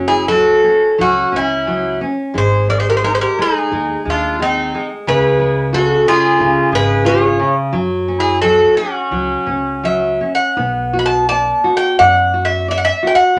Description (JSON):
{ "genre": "fado-style ballad", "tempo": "80-92 BPM", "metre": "4/4", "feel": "rubato", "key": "F# minor", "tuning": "A4 = 435 Hz", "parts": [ { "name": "nylon-string guitar", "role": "accompaniment", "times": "0.0-13.4 s", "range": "C#3 to D5", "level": "-22 LUFS", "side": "equal", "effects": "none" }, { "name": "upright bass", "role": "bass", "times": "0.0-13.4 s", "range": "F#1 to F#2", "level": "-25 LUFS", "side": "equal", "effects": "none" }, { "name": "Greek bouzouki", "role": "melody", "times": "0.1-13.4 s", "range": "D#4 to B5", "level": "-17 LUFS", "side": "equal", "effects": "none" }, { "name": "clear clarinet", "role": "second line", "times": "0.1-10.2 s", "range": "B#3 to A#4", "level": "-21 LUFS", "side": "equal", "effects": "none" } ], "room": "wet studio ambience, RT60 0.5 s", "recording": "none", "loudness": "-15 LUFS", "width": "mono", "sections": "0.0-10.6 A section; 10.6-13.4 B section", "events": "none", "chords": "0.0 F#m7; 2.4 G#5; 5.1 C#sus4; 6.4 C#; 7.7 F#5; 10.6 Bm" }